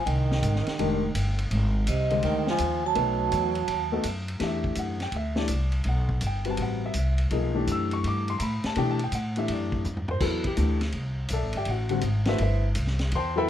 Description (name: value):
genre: modal jazz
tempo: 165 BPM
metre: 4/4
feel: swing 66% on 8ths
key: E minor from 4.4 s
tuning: A4 = 440 Hz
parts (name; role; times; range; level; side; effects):
- vibraphone with medium hard mallets; melody; 0.0-4.0 s; Eb5 to A5; -29 LUFS; right 3 dB; none
- warm tenor saxophone; second line; 0.0-4.0 s; C3 to F#3; -30 LUFS; right 6 dB; none
- upright bass; bass; 0.1-13.5 s; F1 to B2; -27 LUFS; equal; none
- vintage drum kit; drums; 0.1-13.2 s; crash cymbal, hi-hat, kick drum, ride cymbal, snare drum, toms; -34 LUFS; equal; none
- warm grand piano; accompaniment; 0.8-13.5 s; D3 to E6; -28 LUFS; left 3 dB; none
room: light reverb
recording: close, detailed microphones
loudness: -24 LUFS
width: side -11 dB against mid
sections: 0.0-4.4 A section; 4.4-13.5 B section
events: drum fill 9.9-10.2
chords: 0.0 Fm9 (rootless); 3.0 B7; 4.4 Em11; 10.2 Am11